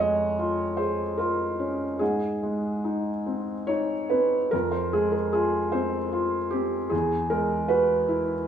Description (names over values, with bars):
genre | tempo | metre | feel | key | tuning
neoclassical minimalist piano | 70-78 BPM | 3/4 | rubato | unclear | A4 = 441 Hz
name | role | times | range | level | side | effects
felt-muted upright piano | solo | 0.0-8.5 s | E2 to Eb5 | -23 LUFS | right 1 dB | none
room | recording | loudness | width
moderate stone room reverb, RT60 1.1 s | band playing live in one room, small room ambience | -23 LUFS | side -8 dB against mid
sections
0.0-4.5 A section; 4.5-8.5 A section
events
none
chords
0.0 Dbadd9/F; 2.0 Ab; 4.5 Fm; 6.9 Eadd9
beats
0.38 1.18 | 2.00 2.84 3.68 | 4.53 5.34 6.13 | 6.92 7.71